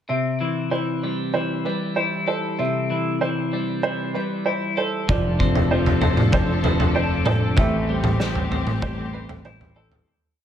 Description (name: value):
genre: post-rock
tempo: 96 BPM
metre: 4/4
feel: straight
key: C major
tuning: A4 = 438 Hz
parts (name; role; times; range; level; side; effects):
- felt-muted upright piano; arpeggios; 0.1-10.1 s; B4 to E5; -27 LUFS; right 4 dB; tape echo
- twelve-string electric guitar; arpeggios; 0.1-10.1 s; A2 to A4; -24 LUFS; left 2 dB; wide subtle chorus, tape echo
- rich studio string section; sustained chords; 5.1-10.0 s; F3 to A4; -29 LUFS; left 3 dB; none
- growling fingered electric bass; bass; 5.1-10.0 s; F1 to A1; -24 LUFS; equal; overdrive
- loose indie drum kit; drums; 5.1-10.1 s; kick drum, snare drum, toms; -22 LUFS; equal; none
room: moderate large studio reverb, RT60 1.1 s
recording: none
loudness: -20 LUFS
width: side -9 dB against mid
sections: 0.1-10.1 A section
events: fade-out 7.6-10.1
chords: 0.1 C6; 5.1 F6; 7.6 Am7